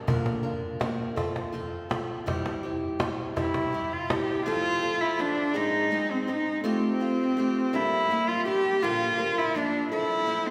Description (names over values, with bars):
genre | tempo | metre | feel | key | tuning
acoustic folk duo or small band | 55 BPM (dotted quarters) | 6/8 | straight | F major | A4 = 437 Hz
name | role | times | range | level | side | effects
picked steel-string acoustic guitar | accompaniment | 0.0-10.5 s | G2 to Bb4 | -32 LUFS | equal | none
cajon | percussion | 0.1-4.3 s | none | -34 LUFS | equal | none
warm cello | melody | 3.4-10.5 s | C4 to G4 | -28 LUFS | equal | none
room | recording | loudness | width
wet concert hall reverb, RT60 2.2 s | recorded in a church or concert hall | -27 LUFS | mono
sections
0.0-4.5 A section; 4.5-10.5 B section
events
none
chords
0.1 Bb; 1.2 F; 2.3 C; 4.5 F; 5.6 Ab; 6.6 Fadd9/A; 7.7 Gm; 8.8 Bb; 9.9 F